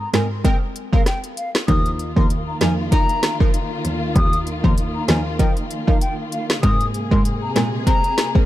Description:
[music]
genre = dancehall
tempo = 97 BPM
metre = 4/4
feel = swing 56% on 16ths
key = unclear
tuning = A4 = 437 Hz
[part]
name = mellow hollow silver concert flute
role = melody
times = 0.0-8.3 s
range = F5 to Eb6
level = -26 LUFS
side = left 2 dB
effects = ping-pong delay
[part]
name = punchy chord stab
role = accompaniment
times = 0.1-8.5 s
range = F3 to Bb4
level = -25 LUFS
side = right 1 dB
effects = chorus
[part]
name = warm cello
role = bass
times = 0.1-7.7 s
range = Eb2 to Bb2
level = -22 LUFS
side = equal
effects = none
[part]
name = afro-pop drum kit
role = drums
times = 0.1-8.5 s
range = hi-hat, kick drum, rim click, snare drum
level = -18 LUFS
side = equal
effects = none
[part]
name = dark studio string section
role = sustained chords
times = 1.7-8.5 s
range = C3 to Ab4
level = -27 LUFS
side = left 1 dB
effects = sidechain pumping
[sound]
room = small room ambience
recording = dark, warm production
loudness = -17 LUFS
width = side -14 dB against mid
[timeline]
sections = 0.0-1.7 A section; 1.7-8.5 B section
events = none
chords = 0.0 Abadd9; 1.7 Ebsus2; 6.6 Abadd9

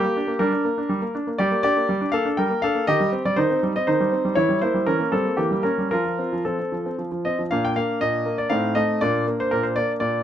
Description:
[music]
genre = classical-period piano sonatina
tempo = 110-125 BPM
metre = 3/4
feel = rubato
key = Bb major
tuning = A4 = 437 Hz
[part]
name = clear concert grand piano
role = solo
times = 0.0-10.2 s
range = A2 to G5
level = -20 LUFS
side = equal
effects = none
[sound]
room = light reverb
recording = close, detailed microphones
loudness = -20 LUFS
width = side -10 dB against mid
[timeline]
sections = 0.0-7.5 A section; 7.5-10.2 B section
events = none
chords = 0.0 Gm; 2.9 Cm/Eb; 4.4 Edim7; 5.9 F; 7.5 Bb; 8.5 F7/A; 9.0 Bb

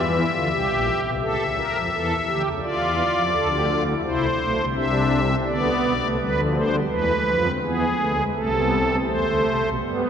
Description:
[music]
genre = classical, baroque-style 3-part fugue for pipe organ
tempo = 84 BPM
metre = 4/4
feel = straight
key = unclear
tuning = A4 = 440 Hz
[part]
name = pipe organ, strings celeste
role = solo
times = 0.0-10.1 s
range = Bb1 to E5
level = -20 LUFS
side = equal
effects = none
[sound]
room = wet cathedral reverb, RT60 4.8 s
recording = nothing above 10.6 kHz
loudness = -20 LUFS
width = side -8 dB against mid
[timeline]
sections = 0.0-9.8 A section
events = none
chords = 0.0 Em7b5; 1.2 A/C#; 2.6 Dm; 4.0 Am; 5.5 Bdim; 6.9 E; 8.3 Am/C

